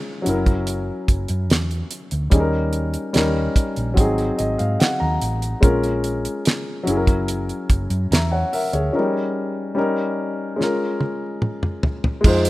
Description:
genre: lush 1970s-style soul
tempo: 73 BPM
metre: 4/4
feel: straight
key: Bb minor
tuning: A4 = 441 Hz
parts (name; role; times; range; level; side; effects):
- warm grand piano; accompaniment; 0.0-12.5 s; F3 to Bb5; -22 LUFS; left 1 dB; none
- hollow-body short-scale fingered electric bass; bass; 0.3-12.5 s; Gb1 to Ab2; -23 LUFS; equal; none
- damped 70s drum kit; drums; 0.3-12.5 s; crash cymbal, hi-hat, kick drum, snare drum, toms; -19 LUFS; equal; none
room: light reverb, studio ambience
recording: rough home demo mix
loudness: -18 LUFS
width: side -18 dB against mid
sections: 0.0-12.2 A section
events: grand piano fill 4.0-5.6; break 8.9-12.2; drum fill 10.6-12.2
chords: 0.3 Gb7; 2.3 Eb7; 4.0 Ab7; 5.6 Bbm7; 6.9 Gb7; 8.9 Eb7; 10.6 Bbm7

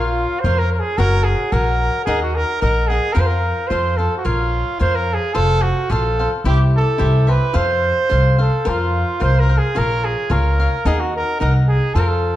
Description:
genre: mexican folk, mariachi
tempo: 109 BPM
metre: 2/4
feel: straight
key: Bb minor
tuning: A4 = 440 Hz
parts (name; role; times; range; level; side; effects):
- clear trumpet; melody; 0.0-12.4 s; F4 to C5; -20 LUFS; right 2 dB; none
- cavaquinho; accompaniment; 0.0-12.4 s; Eb4 to Gb5; -24 LUFS; left 4 dB; none
- upright bass; bass; 0.0-12.3 s; F1 to F2; -17 LUFS; equal; none
room: moderate recital hall reverb, RT60 1.4 s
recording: dark, warm production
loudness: -15 LUFS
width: side -13 dB against mid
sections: 0.0-12.4 A section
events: none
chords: 0.0 Bbm; 1.0 Gb; 2.1 Ebm; 3.2 Fsus4; 3.7 F; 4.3 Bbm; 5.4 F; 6.4 C; 7.5 F; 8.6 Fsus4; 9.8 Bbm; 10.9 Ebm

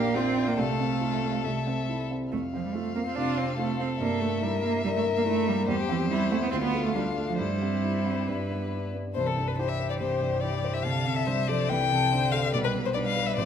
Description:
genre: quick classical-period movement for piano quartet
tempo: 141 BPM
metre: 4/4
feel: straight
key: F major, C major from 5.7 s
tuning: A4 = 440 Hz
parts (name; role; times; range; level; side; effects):
- rich violin; melody; 0.0-13.5 s; D4 to G5; -30 LUFS; left 8 dB; none
- clear cello; second line; 0.0-13.5 s; D3 to D4; -30 LUFS; right 5 dB; none
- rich violin; second line; 0.0-13.5 s; G4 to G5; -36 LUFS; left 4 dB; none
- warm baby grand piano; accompaniment; 0.0-13.5 s; A1 to C5; -29 LUFS; equal; none
room: wet recital hall reverb, RT60 1.6 s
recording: none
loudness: -25 LUFS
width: side -8 dB against mid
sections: 0.0-9.2 A section; 9.2-13.5 B section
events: none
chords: 0.0 Bb; 0.6 F/C; 1.4 C; 2.3 F; 4.0 Edim/G; 5.7 C/E; 6.5 Dm; 7.4 C/G; 8.3 G; 9.2 C; 10.8 Dm7/C; 12.5 G/B

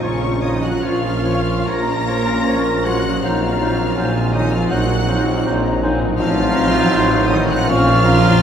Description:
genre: classical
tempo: 68-83 BPM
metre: 4/4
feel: rubato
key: Bb minor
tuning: A4 = 439 Hz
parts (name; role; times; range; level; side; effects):
- warm studio violin section; melody; 0.0-8.4 s; Db6 to Bb6; -28 LUFS; left 3 dB; none
- clear clarinet; second line; 0.0-8.4 s; Db4 to F4; -27 LUFS; equal; none
- clear oboe; second line; 0.0-8.4 s; Bb4 to Db5; -29 LUFS; right 2 dB; none
- mellow silver concert flute; second line; 0.0-8.4 s; Gb5 to Db6; -26 LUFS; equal; none
- rich studio violin section; second line; 0.0-8.4 s; Db5 to Bb5; -27 LUFS; left 3 dB; none
- mellow bassoon; accompaniment; 0.0-8.4 s; F3 to Gb3; -28 LUFS; equal; none
- warm studio viola section; accompaniment; 0.0-8.4 s; C4 to F4; -26 LUFS; right 1 dB; none
- clear trombone section; sustained chords; 0.0-8.4 s; A2 to F#3; -26 LUFS; right 2 dB; none
- mellow French horn section; sustained chords; 0.0-8.4 s; Bb3 to F4; -25 LUFS; left 3 dB; none
- concert harp; arpeggios; 0.0-8.4 s; F2 to Db5; -28 LUFS; left 4 dB; none
- dark trumpet section; stabs; 0.0-8.4 s; Db4 to Bb4; -24 LUFS; right 1 dB; none
- rich studio cello section; bass; 0.0-8.4 s; Db3 to Bb3; -24 LUFS; equal; none
- rich studio double bass section; bass; 0.0-8.4 s; A1 to Bb1; -23 LUFS; right 2 dB; none
- warm tuba; bass; 0.0-8.4 s; A1 to Bb1; -25 LUFS; right 1 dB; none
room: wet cathedral reverb, RT60 5.7 s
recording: recorded in a church or concert hall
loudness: -14 LUFS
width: side -8 dB against mid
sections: 0.0-8.4 A section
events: none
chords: 0.0 Bbm; 3.2 Cm7b5/Bb; 6.2 Adim7; 7.7 Bbm

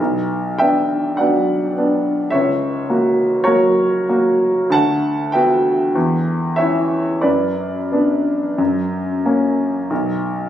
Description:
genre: classical, romantic nocturne for solo piano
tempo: 44-54 BPM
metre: 4/4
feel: rubato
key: B minor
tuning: A4 = 440 Hz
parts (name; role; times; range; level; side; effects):
- clear baby grand piano; solo; 0.0-10.5 s; B1 to A5; -15 LUFS; equal; none
room: wet recital hall reverb, RT60 1.6 s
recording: recorded on a phone in the room, club reverb, compression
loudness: -15 LUFS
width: side -11 dB against mid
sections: 0.0-10.5 A section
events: none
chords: 0.0 Bm; 2.3 F#7/C#; 4.7 Bm/D; 6.0 C#dim/E; 7.2 Bm/F#; 8.6 F#; 9.9 N.C.

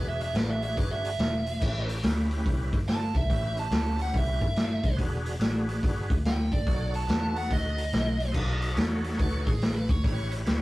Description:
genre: blues rock power trio and southern rock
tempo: 142 BPM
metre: 4/4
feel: swing 64% on 8ths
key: unclear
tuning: A4 = 442 Hz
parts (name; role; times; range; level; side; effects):
- dark smooth lead guitar; second line; 0.0-10.3 s; G#4 to A5; -33 LUFS; right 2 dB; overdrive
- overdriven tonewheel organ; sustained chords; 0.0-10.6 s; C#4 to D#5; -37 LUFS; right 1 dB; slow rotary speaker, chorus vibrato
- vintage muted picked electric bass; bass; 0.0-10.6 s; E1 to E2; -30 LUFS; equal; none
- vintage drum kit; drums; 0.2-10.6 s; crash cymbal, hi-hat, kick drum, snare drum; -28 LUFS; equal; none
room: light reverb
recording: rough rehearsal-room recording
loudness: -25 LUFS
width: side -19 dB against mid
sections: 0.0-10.6 A section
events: lead electric guitar solo 0.0-10.6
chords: 0.0 E7; 1.6 A7; 5.0 E7; 6.7 B7; 10.0 A7

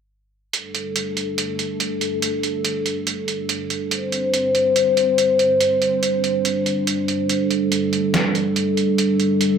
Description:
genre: deep dubstep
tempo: 142 BPM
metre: 4/4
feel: swing 55% on 16ths, half-time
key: unclear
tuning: A4 = 440 Hz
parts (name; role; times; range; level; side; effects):
- dark analog pad; sustained chords; 0.5-9.6 s; G3 to C5; -19 LUFS; equal; lush chorus
- trip hop sampler-style drum kit; drums; 0.5-9.5 s; hi-hat, snare drum; -24 LUFS; right 4 dB; overdrive
room: wet spring reverb, RT60 1.2 s, digital ambience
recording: none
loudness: -18 LUFS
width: side -7 dB against mid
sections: 0.5-9.6 A section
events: none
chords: 0.5 G5

